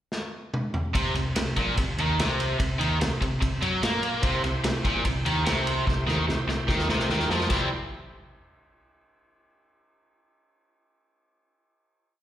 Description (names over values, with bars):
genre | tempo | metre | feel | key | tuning
classic rock | 146 BPM | 4/4 | straight | C mixolydian | A4 = 440 Hz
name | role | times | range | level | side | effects
vintage drum kit | drums | 0.1-7.6 s | crash cymbal, kick drum, ride cymbal, snare drum, toms | -28 LUFS | equal | none
overdriven electric guitar | riff | 0.9-7.7 s | Bb2 to E4 | -26 LUFS | right 1 dB | slapback echo
fingered electric bass | bass | 0.9-7.7 s | Bb1 to Bb2 | -29 LUFS | equal | none
bright tonewheel organ | sustained chords | 4.2-7.8 s | E4 to C5 | -35 LUFS | equal | chorus vibrato, slow rotary speaker
room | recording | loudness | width
light reverb | live gig heard through the venue's PA, recital hall reverb | -23 LUFS | side -11 dB against mid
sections
0.0-0.9 pickup bar; 0.9-7.5 riff; 7.5-9.2 final chord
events
drum fill 0.1-0.9, 5.9-7.5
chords
0.0 N.C.; 0.9 C